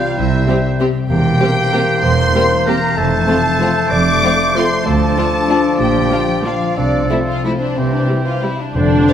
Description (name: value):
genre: classical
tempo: 171-210 BPM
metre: 3/4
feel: rubato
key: F major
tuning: A4 = 437 Hz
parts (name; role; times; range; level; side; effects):
- warm symphonic violin section; melody; 0.0-9.1 s; C5 to D6; -22 LUFS; left 3 dB; none
- large flute ensemble; second line; 0.0-9.1 s; C5 to D6; -24 LUFS; equal; none
- warm clarinet; second line; 0.0-9.1 s; C4 to D5; -23 LUFS; left 1 dB; none
- warm oboe; second line; 0.0-9.1 s; G4 to D5; -23 LUFS; right 2 dB; none
- warm bassoon; accompaniment; 0.0-9.1 s; E3 to C4; -23 LUFS; right 2 dB; none
- concert harp; arpeggios; 0.0-9.1 s; F2 to C5; -21 LUFS; left 7 dB; none
- warm symphonic cello section; bass; 0.2-9.0 s; C2 to C3; -22 LUFS; right 3 dB; none
- warm symphonic double bass section; bass; 0.2-9.0 s; E1 to D2; -21 LUFS; right 4 dB; none
- rich studio violin section; second line; 0.5-9.1 s; C4 to F5; -25 LUFS; left 2 dB; none
- rich symphonic viola section; accompaniment; 0.5-9.1 s; F3 to D4; -24 LUFS; right 2 dB; none
- mellow French horn section; sustained chords; 0.5-9.1 s; D3 to Bb4; -24 LUFS; left 3 dB; none
- timpani; percussion; 8.7-9.1 s; F2; -19 LUFS; right 1 dB; none
room: wet scoring stage reverb, RT60 1.9 s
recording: none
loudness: -13 LUFS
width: side -9 dB against mid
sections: 0.0-8.8 A section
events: none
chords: 0.0 C; 1.1 C7/E; 3.0 F; 4.9 Dm; 5.8 Bb; 6.8 F/C; 7.8 C